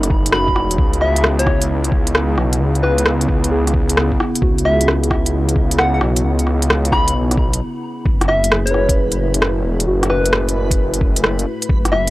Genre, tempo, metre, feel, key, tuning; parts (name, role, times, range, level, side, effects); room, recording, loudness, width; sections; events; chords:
future garage; 132 BPM; 4/4; swing 67% on 16ths; A4 = 440 Hz
muted felt-like synth keys; accompaniment; 0.0-12.1 s; D#4 to B4; -26 LUFS; right 1 dB; chorus, sidechain pumping, analog delay
warbly tape-like pad; sustained chords; 0.0-12.1 s; A2 to G#4; -24 LUFS; left 1 dB; chorus, built-in reverb, sidechain pumping
swelling detuned saw bass; bass; 0.0-12.1 s; E1 to C#2; -18 LUFS; equal; sidechain pumping
organic electronic drum kit; drums; 0.0-12.1 s; hi-hat, rim click; -18 LUFS; equal
electronic kick drum; drums; 0.1-11.8 s; -18 LUFS; equal
soft struck synth lead; melody; 0.3-12.1 s; B4 to B5; -21 LUFS; left 1 dB; chorus, tape echo
backwards swelling texture; texture; 8.1-12.1 s; B4; -30 LUFS; right 2 dB; built-in reverb
little or no reverb; dry, gritty hardware recording, transformer saturation; -14 LUFS; side -18 dB against mid
0.0-8.1 A section; 8.1-12.1 A section
break 7.6-8.1
0.0 F#m9; 0.8 C#m7; 8.1 F#m9